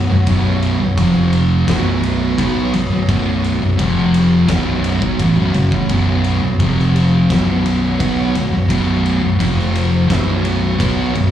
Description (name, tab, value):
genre	stoner and doom metal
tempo	86 BPM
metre	4/4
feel	straight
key	unclear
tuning	A4 = 440 Hz
part	string machine, violins	sustained chords	0.0-11.3 s	F3 to C#5	-27 LUFS	right 1 dB	ensemble chorus
part	thick fuzz guitar	riff	0.0-11.3 s	B1 to B3	-17 LUFS	left 4 dB	distortion
part	thick fuzz guitar	riff	0.0-11.3 s	B1 to B3	-19 LUFS	right 7 dB	distortion
part	fingered electric bass	bass	0.0-11.3 s	B0 to B1	-20 LUFS	equal	overdrive
part	oversized low-tuned drum kit	drums	0.3-11.3 s	kick drum, ride cymbal, snare drum	-23 LUFS	equal	none
room	little or no reverb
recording	live gig heard through the venue's PA, club reverb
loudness	-13 LUFS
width	side -10 dB against mid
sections	0.0-11.3 A section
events	none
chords	0.0 B5; 1.0 F5; 1.7 B5; 3.8 F5; 4.5 B5; 6.6 F5; 7.3 B5; 9.4 F5; 10.1 B5